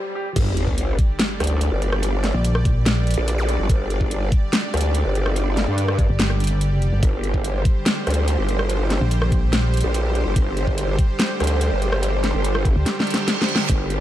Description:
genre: heavy wobble dubstep.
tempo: 144 BPM.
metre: 4/4.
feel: half-time.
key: G minor.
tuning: A4 = 440 Hz.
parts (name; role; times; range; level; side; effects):
swell, sub drop, zap and reverse cymbal; sound effects; 0.0-3.5, 13.0-13.7 s; none; -28 LUFS; right 1 dB; none.
supersaw pad; sustained chords; 0.7-14.0 s; D3 to D5; -28 LUFS; right 2 dB; sidechain pumping.
growl bass; bass; 0.4-14.0 s; G1 to G2; -21 LUFS; equal; chorus, overdrive.
dubstep drum kit; drums; 0.4-14.0 s; crash cymbal, hi-hat, rim click, snare drum; -24 LUFS; equal; studio ambience.
electronic kick drum; drums; 0.4-13.8 s; none; -19 LUFS; equal; studio ambience.
pulsing pluck wobble bass; bass; 2.3-3.2, 6.1-9.8, 12.8 s; G1 to D2; -19 LUFS; equal; chorus, overdrive.
room: digital ambience.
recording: dark, warm production, high-pass filter.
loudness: -18 LUFS.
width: side -13 dB against mid.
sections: 0.4-14.0 A section.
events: break 0.0-0.4; swell 0.0-0.4; drop 0.4-14.0; impact 0.4-2.0; drum fill 12.9-13.7; reverse cymbal 13.0-13.7.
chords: 0.4 G5.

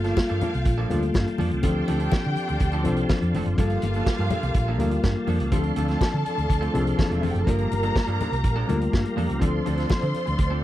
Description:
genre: disco.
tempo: 123 BPM.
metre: 4/4.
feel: straight.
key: G minor.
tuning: A4 = 437 Hz.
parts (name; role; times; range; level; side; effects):
dark studio string section; second line; 0.0-10.6 s; E4 to C6; -31 LUFS; equal; none.
semi-hollow electric guitar; accompaniment; 0.0-10.6 s; F3 to A4; -32 LUFS; right 6 dB; lush chorus.
tine electric piano; accompaniment; 0.0-10.6 s; E3 to Bb4; -28 LUFS; left 3 dB; none.
tonewheel organ; sustained chords; 0.0-10.6 s; Bb3 to C6; -34 LUFS; equal; overdrive, chorus vibrato, slow rotary speaker.
hollow-body short-scale fingered electric bass; bass; 0.0-10.6 s; E1 to D3; -26 LUFS; right 1 dB; none.
vintage drum kit; drums; 0.0-10.5 s; hi-hat, kick drum, snare drum; -25 LUFS; right 1 dB; none.
congas; percussion; 0.2-10.3 s; none; -32 LUFS; left 5 dB; none.
room: little or no reverb.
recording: dry, close 1970s-style studio recording.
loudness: -21 LUFS.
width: side -14 dB against mid.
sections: 0.0-10.6 A section.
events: none.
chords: 0.0 Gm9; 1.6 Dm7; 3.6 Gm9; 5.5 Dm7; 7.5 Gm9; 9.4 Dm7.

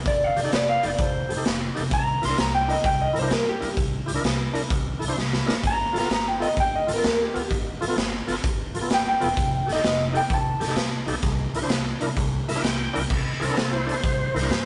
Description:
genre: electric blues shuffle.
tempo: 129 BPM.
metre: 4/4.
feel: swing 68% on 8ths.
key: C mixolydian.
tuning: A4 = 440 Hz.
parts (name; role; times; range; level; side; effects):
electric guitar through a small old amp; melody; 0.1-11.7 s; G4 to C6; -26 LUFS; equal; none.
upright bass; bass; 0.1-14.7 s; E1 to G2; -32 LUFS; equal; none.
raw garage drum kit; drums; 0.1-14.7 s; crash cymbal, hi-hat, kick drum, snare drum; -28 LUFS; equal; none.
tonewheel organ; accompaniment; 0.4-14.7 s; B3 to G5; -32 LUFS; equal; slow rotary speaker, overdrive.
room: moderate stone room reverb, RT60 1.4 s.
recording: rough rehearsal-room recording, tube saturation, nothing above 10.7 kHz.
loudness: -24 LUFS.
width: mono.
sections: 0.0-13.1 A section; 13.1-14.7 B section.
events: drum fill 5.2-5.6; tonewheel organ fill 12.2-13.1.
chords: 0.0 F7; 1.9 C7; 5.6 G7; 9.4 F7; 11.2 C7.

